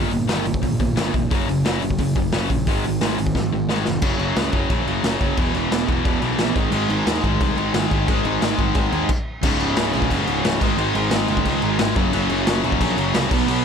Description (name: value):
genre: punk rock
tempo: 178 BPM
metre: 4/4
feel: straight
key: unclear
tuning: A4 = 440 Hz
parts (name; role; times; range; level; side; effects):
- distorted electric guitar; riff; 0.0-13.6 s; Db2 to Cb4; -24 LUFS; left 14 dB; overdrive
- distorted electric guitar; riff; 0.0-13.6 s; Db2 to Cb4; -24 LUFS; right 14 dB; distortion
- fuzz picked electric bass; bass; 0.0-13.6 s; Db1 to Eb2; -26 LUFS; equal; overdrive
- raw garage drum kit; drums; 0.1-13.6 s; crash cymbal, hi-hat, kick drum, snare drum; -23 LUFS; equal; none
- distorted electric guitar; riff; 6.7-13.6 s; Db2 to Cb4; -26 LUFS; left 1 dB; overdrive
room: light reverb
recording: none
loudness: -18 LUFS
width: side -6 dB against mid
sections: 0.0-4.0 A section; 4.0-9.4 B section; 9.4-13.6 C section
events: drum fill 3.4-4.0; stop 9.1-9.4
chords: 0.0 Eb; 1.3 Gb; 2.7 Ab5; 4.0 Gb5; 5.4 E5; 6.6 Ab5; 9.4 Db5; 10.6 Ab5; 12.0 Gb5